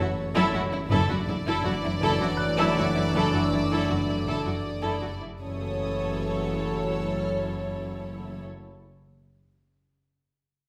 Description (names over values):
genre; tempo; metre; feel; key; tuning
cinematic; 80 BPM; 3/4; straight; F# minor; A4 = 440 Hz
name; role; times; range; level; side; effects
warm symphonic violin section; melody; 0.0-8.4 s; C#5 to D5; -36 LUFS; equal; none
warm chamber violin section; second line; 0.0-8.4 s; E4 to A4; -35 LUFS; equal; none
dark symphonic viola section; accompaniment; 0.0-8.4 s; E4; -35 LUFS; equal; none
bright trombone section; sustained chords; 0.0-8.4 s; E3 to F#3; -35 LUFS; equal; none
dark French horn section; sustained chords; 0.0-8.4 s; A3 to D4; -36 LUFS; equal; none
dark studio cello section; bass; 0.0-8.4 s; F#2; -35 LUFS; equal; none
metallic inharmonic drone; drone; 0.0-8.4 s; F#1; -39 LUFS; equal; chorus, built-in reverb
dark grand piano; texture; 0.0-5.4 s; F#6; -42 LUFS; equal; none
warm symphonic violin section; texture; 0.0-7.3 s; C#6 to E6; -44 LUFS; equal; none
rich symphonic double bass section; bass; 0.5-8.4 s; F#1; -36 LUFS; equal; none
room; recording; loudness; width
wet recital hall reverb, RT60 1.4 s; recorded in a church or concert hall; -26 LUFS; mono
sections
0.0-5.4 A section; 5.4-7.7 B section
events
none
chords
0.0 F#m7; 0.9 Dadd9/F#; 5.4 F#m7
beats
0.17 | 0.91 1.65 2.39 | 3.14 3.89 4.64 | 5.41 6.17 6.91